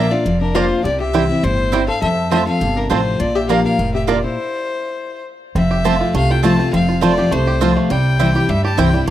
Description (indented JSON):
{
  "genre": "bluegrass",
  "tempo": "204 BPM",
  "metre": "4/4",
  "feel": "straight",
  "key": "unclear",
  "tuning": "A4 = 440 Hz",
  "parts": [
    { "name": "bluegrass banjo", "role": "melody", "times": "0.0-9.1 s", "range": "G3 to G4", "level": "-24 LUFS", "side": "right 7 dB", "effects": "none" },
    { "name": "clear fiddle", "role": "melody", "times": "0.0-9.1 s", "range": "Bb4 to A5", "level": "-21 LUFS", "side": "left 2 dB", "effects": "tape echo" },
    { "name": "lap resonator guitar", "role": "second line", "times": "0.0-5.2 s", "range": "D4 to Bb4", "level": "-24 LUFS", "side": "left 4 dB", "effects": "none" },
    { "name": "picked steel-string acoustic guitar", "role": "accompaniment", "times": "0.0-9.1 s", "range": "F2 to F4", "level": "-18 LUFS", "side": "left 2 dB", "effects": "none" },
    { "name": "mandolin", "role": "stabs", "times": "0.0-8.9 s", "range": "Bb3 to Bb5", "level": "-23 LUFS", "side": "right 10 dB", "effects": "none" },
    { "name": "upright bass", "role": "bass", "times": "0.0-9.1 s", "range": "F1 to F2", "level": "-21 LUFS", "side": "right 1 dB", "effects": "none" }
  ],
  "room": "small room reverb",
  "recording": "dry, close 1970s-style studio recording",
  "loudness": "-14 LUFS",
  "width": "side -12 dB against mid",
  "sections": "0.0-5.6 A section; 5.6-9.1 B section",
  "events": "stop 4.4-5.6",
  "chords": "0.0 Bb; 0.8 C; 2.0 F; 3.2 Bb; 4.4 N.C.; 5.6 F; 7.9 C"
}